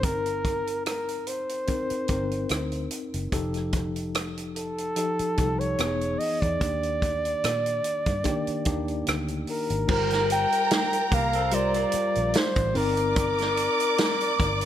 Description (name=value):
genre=lush 1970s-style soul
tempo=73 BPM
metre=4/4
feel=swing 54% on 16ths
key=G minor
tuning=A4 = 440 Hz
part: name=warm flugelhorn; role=melody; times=0.0-14.7 s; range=A4 to G5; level=-27 LUFS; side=equal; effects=none
part: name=tine electric piano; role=accompaniment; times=0.0-14.7 s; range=Eb3 to C5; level=-32 LUFS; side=left 3 dB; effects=fast stereo tremolo
part: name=vintage muted fingered electric bass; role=bass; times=0.0-14.7 s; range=E1 to Bb2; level=-32 LUFS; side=equal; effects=none
part: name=vintage drum kit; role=drums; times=0.0-14.7 s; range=crash cymbal, hi-hat, kick drum, rim click, snare drum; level=-28 LUFS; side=right 1 dB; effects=none
part: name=warm symphonic violin section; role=second line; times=9.9-14.7 s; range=Bb4 to D6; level=-28 LUFS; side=right 1 dB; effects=none
part: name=electric guitar through a small old amp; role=riff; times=11.1-12.7 s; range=Bb3 to D5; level=-33 LUFS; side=right 5 dB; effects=none
room=light reverb, studio ambience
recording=none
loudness=-23 LUFS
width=side -11 dB against mid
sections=0.0-9.9 A section; 9.9-14.7 B section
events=none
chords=0.0 Cm7/G; 3.3 F9; 5.8 Emaj7; 6.6 Ebmaj7; 9.9 Gm11; 12.8 Cm9/G